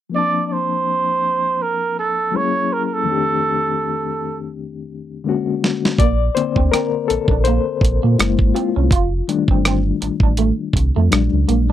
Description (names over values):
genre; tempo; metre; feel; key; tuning
R&B, neo-soul; 82 BPM; 4/4; swing 57% on 16ths; Bb major; A4 = 441 Hz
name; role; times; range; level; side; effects
barky reed electric piano; accompaniment; 0.1-11.7 s; F2 to A5; -21 LUFS; left 8 dB; overdrive, fast tremolo
clear flugelhorn; melody; 0.2-4.4 s; A4 to D5; -19 LUFS; right 4 dB; slapback echo
dusty soul sampler-style drum kit; drums; 5.6-11.7 s; hi-hat, kick drum, rim click, snare drum; -17 LUFS; right 1 dB; none
electric guitar through a small old amp; second line; 6.0-11.7 s; A3 to F4; -23 LUFS; right 10 dB; none
sub bass with octave; bass; 6.0-11.7 s; F1 to Bb2; -17 LUFS; right 1 dB; transformer saturation
room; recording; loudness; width
little or no reverb; dry, close 1970s-style studio recording; -16 LUFS; side -12 dB against mid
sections
0.1-6.0 A section; 6.0-11.7 B section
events
drum fill 4.5-6.0; reed electric piano solo 6.0-11.7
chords
0.1 Bbmaj9; 2.3 Gb9; 3.1 F13; 5.3 Bb7alt; 6.0 Bbadd9; 8.2 Gb9; 8.9 F13; 11.1 Bb7alt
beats
| 0.13 0.86 1.59 2.33 | 3.06 3.79 4.52 5.25 | 5.98 6.72 7.45 8.18 | 8.91 9.64 10.38 11.11